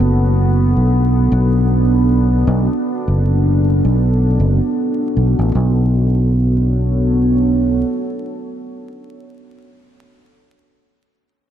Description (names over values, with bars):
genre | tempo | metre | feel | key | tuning
ambient dub | 78 BPM | 4/4 | swing 57% on 16ths | B minor | A4 = 443 Hz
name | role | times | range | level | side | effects
deep dark ambient pad | sustained chords | 0.0-9.2 s | B3 to C#5 | -18 LUFS | right 1 dB | chorus, built-in reverb
fingered electric bass | bass | 0.0-7.8 s | F#1 to B1 | -14 LUFS | equal | none
room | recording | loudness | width
light reverb, digital ambience | vinyl crackle | -13 LUFS | side -10 dB against mid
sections
0.0-5.6 A section; 5.6-8.6 B section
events
none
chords
0.0 Bm9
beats
0.17 0.94 1.71 | 2.48 3.24 4.01 4.78 | 5.55 6.32 7.09 7.86